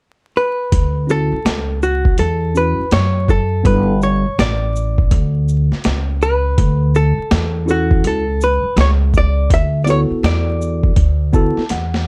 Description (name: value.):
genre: hip hop, jazz-hop.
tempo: 82 BPM.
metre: 4/4.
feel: swing 64% on 16ths.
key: D major.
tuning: A4 = 439 Hz.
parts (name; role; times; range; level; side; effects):
hollow-body jazz guitar; melody; 0.4-11.7 s; F#4 to E5; -22 LUFS; equal; none.
upright bass; bass; 0.7-12.0 s; G1 to F#2; -19 LUFS; equal; none.
boom bap sampler-style drum kit; drums; 0.7-12.1 s; hi-hat, kick drum, shaker, snare drum; -19 LUFS; equal; none.
mellow tine electric piano; accompaniment; 1.1-12.0 s; B3 to A5; -23 LUFS; equal; none.
room: light reverb.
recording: dark, warm production, vinyl crackle.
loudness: -16 LUFS.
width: mono.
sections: 0.7-12.1 A section.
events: tine electric piano fill 11.0-12.1; drum fill 11.7-12.1.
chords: 0.0 N.C.; 0.7 Dmaj9; 3.7 Gadd9; 6.6 Dmaj9; 9.5 D69.